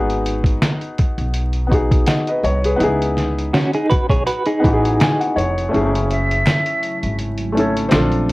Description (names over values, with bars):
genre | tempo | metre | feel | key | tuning
lo-fi hip hop | 82 BPM | 4/4 | swing 56% on 16ths | unclear | A4 = 442 Hz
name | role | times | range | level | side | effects
felt-muted upright piano | accompaniment | 0.0-8.3 s | E3 to B5 | -20 LUFS | left 1 dB | cassette tape, low-pass filter
upright bass | bass | 0.0-8.3 s | E#1 to C#2 | -21 LUFS | equal | transformer saturation
lo-fi sampler-style drum kit | drums | 0.1-8.3 s | hi-hat, kick drum, snare drum | -18 LUFS | equal | none
semi-hollow electric guitar | second line | 3.5-5.5 s | C#4 to C#5 | -20 LUFS | right 1 dB | tremolo, low-pass filter, tape echo
deep dark ambient pad | sustained chords | 6.6-8.3 s | C#3 to E4 | -27 LUFS | equal | chorus, built-in reverb, low-pass filter
breathy jazz flute | melody | 6.1-7.8 s | C#5 to E5 | -22 LUFS | right 1 dB | low-pass filter
finger snaps | percussion | 6.5-8.1 s | none | -34 LUFS | equal | none
room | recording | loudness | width
moderate small room reverb, RT60 0.5 s | worn, warbling old tape, cassette tape, vinyl crackle, warbly pitch drift | -15 LUFS | side -20 dB against mid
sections
0.0-5.7 A section; 5.7-8.3 A section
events
kick muted 5.7-8.3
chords
0.0 G#m7; 2.8 C#m7; 5.7 F#m7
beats
0.61 1.34 2.07 | 2.80 3.53 4.27 5.00 | 5.73 6.46 7.19 7.92